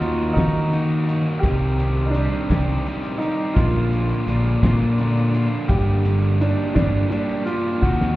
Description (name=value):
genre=indie rock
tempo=56 BPM (dotted quarters)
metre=6/8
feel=straight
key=unclear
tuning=A4 = 440 Hz
part: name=warm upright piano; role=melody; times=0.0-8.2 s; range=D4 to G4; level=-26 LUFS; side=right 1 dB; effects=slapback echo
part: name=fuzz guitar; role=riff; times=0.0-8.2 s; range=G2 to G4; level=-24 LUFS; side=equal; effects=distortion
part: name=growling fingered electric bass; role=bass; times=0.0-8.2 s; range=G1 to Eb3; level=-20 LUFS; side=equal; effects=overdrive
part: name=cloth-damped thuddy drum kit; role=drums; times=0.0-8.2 s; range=hi-hat, kick drum, snare drum, toms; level=-20 LUFS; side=equal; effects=none
part: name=group handclap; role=percussion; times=1.4-8.0 s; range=none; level=-44 LUFS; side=left 4 dB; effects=none
room=small room ambience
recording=heard muffled through a wall, stone room reverb, EQ, nothing above 7.9 kHz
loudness=-18 LUFS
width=side -16 dB against mid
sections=0.0-8.2 A section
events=drum fill 7.8-8.2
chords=0.0 Ebm; 1.4 Cm; 3.6 Bb; 5.7 Gm